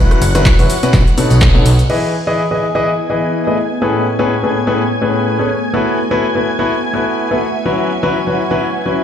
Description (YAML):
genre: piano house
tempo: 125 BPM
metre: 4/4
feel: swing 56% on 16ths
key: E major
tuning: A4 = 440 Hz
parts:
  - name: string machine, violins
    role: sustained chords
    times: 0.0-9.0 s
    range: F#5 to G#6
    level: -24 LUFS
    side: equal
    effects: ensemble chorus, sidechain pumping
  - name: clear concert grand piano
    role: riff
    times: 0.0-9.0 s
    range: A2 to D#5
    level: -15 LUFS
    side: left 2 dB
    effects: sidechain pumping, ping-pong delay
  - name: punchy analog drum machine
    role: drums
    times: 0.1-2.0 s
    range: crash cymbal, handclaps, hi-hat, rim click, shaker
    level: -22 LUFS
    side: equal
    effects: overdrive, studio reverb
  - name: tambourine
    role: percussion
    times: 0.1-1.9 s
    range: none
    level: -34 LUFS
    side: right 2 dB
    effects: none
  - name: fat analog bass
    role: bass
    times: 0.2-1.8 s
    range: E1 to B1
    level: -12 LUFS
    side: right 1 dB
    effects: sidechain pumping
  - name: electronic kick drum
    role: drums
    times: 0.5-1.5 s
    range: none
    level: -10 LUFS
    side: equal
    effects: overdrive, studio reverb
  - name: ethereal airy pad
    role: texture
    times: 2.6-9.0 s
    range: A3 to G#5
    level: -21 LUFS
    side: equal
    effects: ensemble chorus, built-in reverb, sidechain pumping
room: light reverb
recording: played on a big sound system in a bare room, large studio reverb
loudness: -12 LUFS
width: side -9 dB against mid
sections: 0.0-1.9 A section; 1.9-9.0 B section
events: band accent 1.4; filter sweep on string machine 1.9-9.0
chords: 0.0 F#7sus4; 0.9 B9; 1.9 Emaj7; 3.6 Amaj9; 5.5 B7sus4; 7.7 F#7sus4